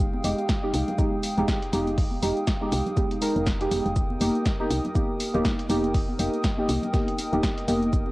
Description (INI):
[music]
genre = deep house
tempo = 121 BPM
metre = 4/4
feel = swing 58% on 16ths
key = F minor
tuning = A4 = 440 Hz
[part]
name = hollow soft pad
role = sustained chords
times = 0.0-8.1 s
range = Ab3 to Eb6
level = -35 LUFS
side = equal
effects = chorus, sidechain pumping, cassette tape
[part]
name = deep mellow chord stab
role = stabs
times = 0.0-8.1 s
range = Ab3 to Bb4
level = -26 LUFS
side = equal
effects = chorus, sidechain pumping, cassette tape, tape echo
[part]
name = woody FM bass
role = bass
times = 0.0-8.1 s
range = Eb1 to C2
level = -29 LUFS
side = equal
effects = tube saturation, sidechain pumping
[part]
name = congas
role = percussion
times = 0.1-8.1 s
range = none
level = -35 LUFS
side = right 1 dB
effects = none
[part]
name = deep house drum kit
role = drums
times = 0.2-8.0 s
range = hi-hat, snare drum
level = -32 LUFS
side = equal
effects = overdrive, cassette tape
[part]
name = dusty soul sampler-style drum kit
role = drums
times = 0.2-8.1 s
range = hi-hat, shaker, snare drum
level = -41 LUFS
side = equal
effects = sidechain pumping on perc, high-pass filter on perc, cassette tape, high-pass filter on snare, sidechain pumping on hats, high-pass filter on hats, high-pass filter on room
[part]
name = electronic kick drum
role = drums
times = 0.5-8.0 s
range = none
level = -26 LUFS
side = equal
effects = overdrive, cassette tape
[sound]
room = moderate spring reverb, RT60 1.9 s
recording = home recording on cassette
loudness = -22 LUFS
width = side -19 dB against mid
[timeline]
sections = 0.0-8.1 A section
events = none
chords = 0.0 Fm9; 4.0 Eb